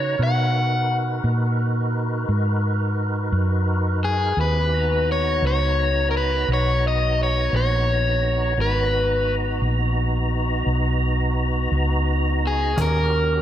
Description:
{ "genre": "slow blues", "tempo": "57 BPM (dotted quarters)", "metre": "12/8", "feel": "straight", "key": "G# minor", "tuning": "A4 = 440 Hz", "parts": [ { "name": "overdriven electric guitar", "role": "melody", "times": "0.0-13.4 s", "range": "G#4 to F#5", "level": "-22 LUFS", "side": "left 1 dB", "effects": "spring reverb" }, { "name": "tonewheel organ", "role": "sustained chords", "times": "0.0-13.4 s", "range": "B3 to A#5", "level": "-26 LUFS", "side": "right 1 dB", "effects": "slow rotary speaker, overdrive, chorus vibrato" }, { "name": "hollow-body short-scale fingered electric bass", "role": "bass", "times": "0.0-13.4 s", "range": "G#1 to C#3", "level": "-22 LUFS", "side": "equal", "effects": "none" }, { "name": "cajon", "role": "drums", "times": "12.8-12.9 s", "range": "none", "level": "-31 LUFS", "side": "equal", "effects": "none" } ], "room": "light reverb, digital ambience", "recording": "none", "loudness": "-19 LUFS", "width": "side -11 dB against mid", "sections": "0.0-13.4 A section", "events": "none", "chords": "0.0 G#m9; 12.8 D#7#9", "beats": "| 0.21 1.25 2.30 3.34 | 4.39 5.43 6.48 7.53 | 8.58 9.62 10.67 11.72 | 12.77" }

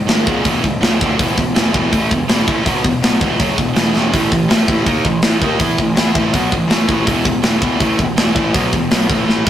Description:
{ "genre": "heavy metal", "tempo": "163 BPM", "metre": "4/4", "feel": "straight", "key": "unclear", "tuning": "A4 = 441 Hz", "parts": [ { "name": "heavy high-gain guitar", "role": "riff", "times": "0.0-9.5 s", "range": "C#2 to E4", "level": "-18 LUFS", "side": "right 4 dB", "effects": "distortion" }, { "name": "tight distorted guitar", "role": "riff", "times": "0.0-9.5 s", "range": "C#2 to E4", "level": "-20 LUFS", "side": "left 5 dB", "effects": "distortion" }, { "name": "fuzz picked electric bass", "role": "bass", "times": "0.0-9.5 s", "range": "C#1 to E2", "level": "-23 LUFS", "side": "equal", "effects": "overdrive" }, { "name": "tight metal drum kit", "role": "drums", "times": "0.1-9.5 s", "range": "hi-hat, kick drum, snare drum", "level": "-16 LUFS", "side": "equal", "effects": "none" } ], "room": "light reverb", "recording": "rough rehearsal-room recording, tube saturation", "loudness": "-13 LUFS", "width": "side -11 dB against mid", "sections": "0.0-9.5 A section", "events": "drum fill 3.9, 9.3", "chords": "0.0 C#m; 1.2 E5; 4.1 A5; 7.1 E5", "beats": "0.08 0.45 0.82 | 1.19 1.56 1.92 2.29 | 2.66 3.03 3.40 3.76 | 4.13 4.50 4.87 5.23 | 5.60 5.97 6.33 6.70 | 7.07 7.44 7.80 8.17 | 8.54 8.91 9.28" }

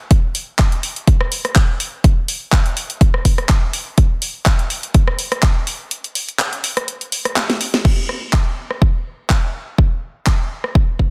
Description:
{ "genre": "house", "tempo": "124 BPM", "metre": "4/4", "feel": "swing 54% on 16ths", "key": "none", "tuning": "none", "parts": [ { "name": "electronic kick drum", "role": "drums", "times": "0.1-11.1 s", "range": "none", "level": "-16 LUFS", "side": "equal", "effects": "none" }, { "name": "house drum kit", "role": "drums", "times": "0.1-10.7 s", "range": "crash cymbal, handclaps, hi-hat, rim click, snare drum", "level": "-23 LUFS", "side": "equal", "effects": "soft clipping on snare" } ], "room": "little or no reverb", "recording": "dense, heavily limited modern master", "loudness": "-18 LUFS", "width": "mono", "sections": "0.0-7.8 A section; 7.8-11.1 B section", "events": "break 5.9-7.8; drum fill 7.4-7.8; band accent 7.7", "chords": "none", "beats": "| 0.11 0.59 1.07 1.56 | 2.04 2.53 3.01 3.49 | 3.98 4.46 4.95 5.43 | 5.91 6.40 6.88 7.37 | 7.85 8.33 8.82 9.30 | 9.78 10.27 10.75" }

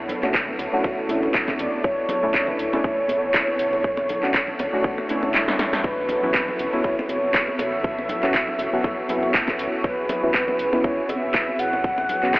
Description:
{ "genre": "deep house", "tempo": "120 BPM", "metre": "4/4", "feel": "swing 55% on 16ths", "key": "A major", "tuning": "A4 = 442 Hz", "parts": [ { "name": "warm analog pad", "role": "sustained chords", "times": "0.0-12.4 s", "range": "D3 to C#5", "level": "-29 LUFS", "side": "equal", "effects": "chorus, vintage 12-bit sampler grit, sidechain pumping" }, { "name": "sub bass with octave", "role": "bass", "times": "0.0-12.4 s", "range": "E1 to A2", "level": "-43 LUFS", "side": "equal", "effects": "sidechain pumping" }, { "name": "punchy analog drum machine", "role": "drums", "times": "0.1-12.4 s", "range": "handclaps, hi-hat, snare drum", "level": "-25 LUFS", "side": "equal", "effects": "none" }, { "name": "congas", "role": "percussion", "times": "0.1-12.4 s", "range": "none", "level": "-32 LUFS", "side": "equal", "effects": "none" }, { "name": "deep mellow chord stab", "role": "stabs", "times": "0.2-12.3 s", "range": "F#3 to F#4", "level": "-27 LUFS", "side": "equal", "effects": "chorus, sidechain pumping, tape echo" }, { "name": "electronic kick drum", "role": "drums", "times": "0.3-12.4 s", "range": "none", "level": "-26 LUFS", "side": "equal", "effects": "none" }, { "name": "breathy flute-like synth lead", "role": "melody", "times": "1.6-12.4 s", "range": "B4 to F#5", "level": "-25 LUFS", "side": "equal", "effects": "analog chorus, vintage 12-bit sampler grit, diffuse ambient delay" } ], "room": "wet huge ambient reverb, RT60 7.8 s", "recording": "dreamy mix soaked in reverb, telephone sound", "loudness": "-20 LUFS", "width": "side -22 dB against mid", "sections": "0.0-12.4 A section", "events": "kick drops out 5.3-5.8; drum fill 5.3-5.8", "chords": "0.0 Bm11; 5.8 A69", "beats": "0.34 0.84 1.34 | 1.84 2.34 2.84 3.34 | 3.84 4.34 4.84 5.34 | 5.84 6.34 6.84 7.34 | 7.84 8.34 8.84 9.34 | 9.84 10.34 10.84 11.34 | 11.84 12.34" }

